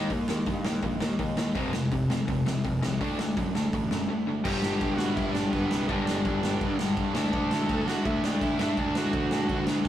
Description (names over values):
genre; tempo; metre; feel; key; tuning
punk rock; 166 BPM; 4/4; straight; unclear; A4 = 440 Hz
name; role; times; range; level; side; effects
overdriven electric guitar; riff; 0.0-9.9 s; F2 to D4; -29 LUFS; left 2 dB; none
tight distorted guitar; riff; 0.0-9.9 s; F2 to Eb4; -34 LUFS; right 6 dB; distortion
fuzz picked electric bass; bass; 0.0-9.9 s; F1 to D3; -33 LUFS; equal; overdrive
raw garage drum kit; drums; 0.1-9.9 s; crash cymbal, hi-hat, kick drum, snare drum; -30 LUFS; equal; none
bluesy overdriven lead guitar; melody; 4.4-9.6 s; B3 to A5; -33 LUFS; right 2 dB; distortion
room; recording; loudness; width
light reverb; rough rehearsal-room recording, tube saturation; -25 LUFS; side -11 dB against mid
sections
0.0-4.4 A section; 4.4-9.9 B section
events
none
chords
0.0 Eb5; 1.6 F5; 3.0 D; 4.4 G; 7.2 D